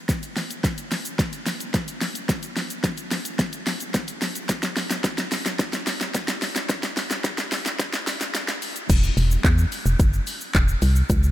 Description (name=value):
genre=dance-pop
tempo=109 BPM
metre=4/4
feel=straight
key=unclear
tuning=A4 = 440 Hz
part: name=deep house drum kit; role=drums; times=0.1-11.3 s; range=crash cymbal, handclaps, hi-hat, kick drum, shaker, snare drum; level=-23 LUFS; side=equal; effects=none
part: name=organ-like FM bass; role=bass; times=8.9-11.3 s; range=E1 to E2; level=-19 LUFS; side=equal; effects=sidechain pumping
room=light reverb, digital ambience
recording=high-pass filter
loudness=-22 LUFS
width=side -14 dB against mid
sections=0.0-8.9 A section; 8.9-11.3 B section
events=build-up 0.0-8.9; drum fill 0.0-8.9; filter sweep 0.0-8.9; drop 8.9-11.3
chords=none